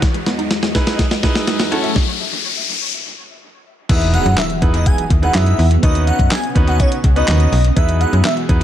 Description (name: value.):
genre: dance-pop.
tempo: 124 BPM.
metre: 4/4.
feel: straight.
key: E major.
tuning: A4 = 439 Hz.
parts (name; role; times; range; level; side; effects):
clear concert grand piano; accompaniment; 0.0-8.6 s; B3 to B4; -23 LUFS; right 3 dB; sidechain pumping.
string machine, cellos; sustained chords; 0.0-8.6 s; E2 to E5; -25 LUFS; left 1 dB; phaser, ensemble chorus, sidechain pumping.
wide unison pluck; arpeggios; 0.0-1.9 s; E3 to E5; -28 LUFS; equal; auto-pan, sidechain pumping, dub echo.
clean 12-bit digital drum machine; drums; 0.0-8.6 s; crash cymbal, handclaps, hi-hat, kick drum, snare drum; -17 LUFS; equal; dub echo.
riser and impact; sound effects; 0.0-5.8 s; none; -24 LUFS; left 3 dB; none.
airy dreamy lead; melody; 3.9-8.6 s; C#5 to G#5; -21 LUFS; equal; chorus, dub echo.
slap-like FM bass; bass; 3.9-8.6 s; B1 to F#2; -15 LUFS; equal; sidechain pumping.
room: little or no reverb.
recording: echo-heavy mix.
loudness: -13 LUFS.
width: side -11 dB against mid.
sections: 0.0-3.9 A section; 3.9-8.6 B section.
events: build-up 0.0-3.9; drum fill 0.0-2.0; riser 0.0-3.9; stop 2.0-3.9; drop 3.9-8.6; impact 3.9-5.8.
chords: 0.0 Emaj7; 1.7 F#m7; 3.9 Emaj7; 5.8 Badd9/D#; 7.8 Emaj7.